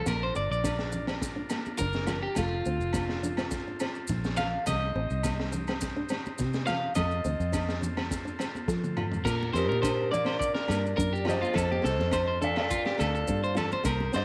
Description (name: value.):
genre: highlife guitar band.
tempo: 104 BPM.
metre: 4/4.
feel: straight.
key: Bb major.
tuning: A4 = 441 Hz.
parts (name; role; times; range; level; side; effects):
combo organ; sustained chords; 0.0-14.2 s; C4 to Bb4; -44 LUFS; equal; none.
electric guitar at the edge of break-up; arpeggios; 0.0-14.2 s; F4 to F5; -34 LUFS; equal; slapback echo.
fingered electric bass; bass; 0.0-14.2 s; F1 to F3; -34 LUFS; equal; none.
nylon-string guitar; accompaniment; 0.1-14.2 s; A3 to A4; -40 LUFS; equal; none.
crunchy breakbeat drum kit; drums; 0.1-14.2 s; crash cymbal, kick drum, snare drum, toms; -37 LUFS; equal; none.
agogo bells; percussion; 0.1-14.0 s; none; -43 LUFS; equal; none.
congas; percussion; 0.1-14.1 s; none; -42 LUFS; equal; none.
maracas; percussion; 0.1-14.2 s; none; -46 LUFS; equal; none.
electric guitar at the edge of break-up; melody; 9.6-14.2 s; G4 to F5; -33 LUFS; equal; slapback echo.
room: light reverb, studio reverb.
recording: none.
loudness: -29 LUFS.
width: mono.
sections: 0.0-9.3 A section; 9.3-14.2 B section.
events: clean electric guitar solo 0.0-9.3; drum fill 8.7-9.3.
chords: 0.1 Bb; 2.4 F; 4.7 Cm; 7.0 F; 9.3 Bb; 11.6 F.